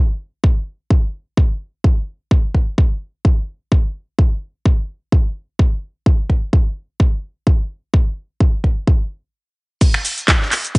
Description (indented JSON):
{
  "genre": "house",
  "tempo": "128 BPM",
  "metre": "4/4",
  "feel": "swing 56% on 16ths",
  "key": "none",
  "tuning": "none",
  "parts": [
    { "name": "electronic kick drum", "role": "drums", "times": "0.4-10.8 s", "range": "none", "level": "-14 LUFS", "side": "equal", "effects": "cassette tape" },
    { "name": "gated 80s drum kit", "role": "drums", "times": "9.8-10.8 s", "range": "hi-hat, snare drum", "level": "-30 LUFS", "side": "right 1 dB", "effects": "none" },
    { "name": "house drum kit", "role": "drums", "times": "9.8-10.8 s", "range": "cabasa, crash cymbal, finger snaps, handclaps, hi-hat, ride cymbal", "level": "-17 LUFS", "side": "equal", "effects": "low-pass filter on hats, cassette tape, low-pass filter on cymbals, low-pass filter on perc, low-pass filter on snare, low-pass filter on room" }
  ],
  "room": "little or no reverb",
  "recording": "home recording on cassette, nothing above 11.0 kHz",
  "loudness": "-16 LUFS",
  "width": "side -30 dB against mid",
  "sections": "0.0-9.8 A section",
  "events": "stop 9.3-9.8",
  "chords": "none"
}